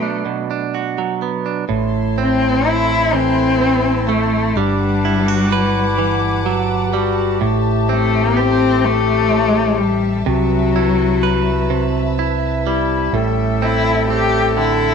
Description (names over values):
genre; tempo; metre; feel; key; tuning
acoustic folk-pop ballad; 42 BPM (dotted quarters); 6/8; straight; A dorian; A4 = 440 Hz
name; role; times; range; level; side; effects
warm cello; melody; 0.0-14.9 s; F#3 to G4; -18 LUFS; left 3 dB; none
direct-recorded clean electric guitar; accompaniment; 0.0-14.9 s; A2 to B4; -20 LUFS; right 10 dB; none
clear clarinet; second line; 1.7-14.9 s; D4 to A4; -21 LUFS; left 10 dB; none
warm chamber string section; sustained chords; 1.7-14.9 s; A4 to D6; -26 LUFS; left 1 dB; none
fingered electric bass; bass; 1.7-14.9 s; G1 to C2; -21 LUFS; equal; none
room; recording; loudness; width
moderate echo chamber reverb, RT60 1.7 s, small room ambience; 1960s-style stereo with parts hard left and right; -14 LUFS; side -6 dB against mid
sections
0.0-1.7 A section; 1.7-14.9 B section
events
none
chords
0.0 Bm7; 1.7 Am; 4.6 Gmaj7; 7.4 Am7; 10.3 Cmaj7; 13.1 Am7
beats
0.26 | 1.70 3.13 | 4.56 5.99 | 7.42 8.85 | 10.27 11.70 | 13.13 14.57